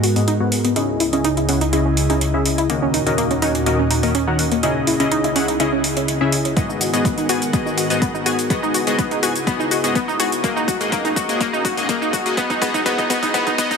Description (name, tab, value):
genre	progressive house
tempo	124 BPM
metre	4/4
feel	straight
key	C# dorian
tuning	A4 = 440 Hz
part	airy breathy pad	sustained chords	0.0-13.8 s	C#2 to F#5	-23 LUFS	equal	chorus, sidechain pumping
part	analog pluck	arpeggios	0.0-13.8 s	A#3 to F#4	-21 LUFS	equal	chorus, sidechain pumping, tape echo
part	electronic hi-hat and shaker	drums	0.0-13.8 s	none	-25 LUFS	right 1 dB	overdrive, studio reverb
part	supersaw stab	stabs	0.2-13.8 s	G#2 to G#5	-21 LUFS	left 2 dB	sidechain pumping, low-pass filter, tape echo
part	electronic kick drum	drums	6.6-13.8 s	none	-24 LUFS	right 1 dB	overdrive, studio reverb
part	plucky unison lead	melody	13.6-13.8 s	D#5	-30 LUFS	right 1 dB	none
room	moderate huge ambient reverb, RT60 8.1 s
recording	dense, heavily limited modern master, high-pass filter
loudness	-16 LUFS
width	side -6 dB against mid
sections	0.0-13.8 A section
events	build-up 0.0-13.8; filter sweep on synth pluck 0.0-13.8; filter sweep on supersaw synth 0.0-13.8; filter sweep 0.0-13.8; drum fill 6.6-13.8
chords	0.0 G#m7; 0.8 C#madd9; 2.7 D#m7; 4.6 C#madd9; 6.6 G#m7; 8.5 C#madd9; 10.4 D#m7; 12.4 C#madd9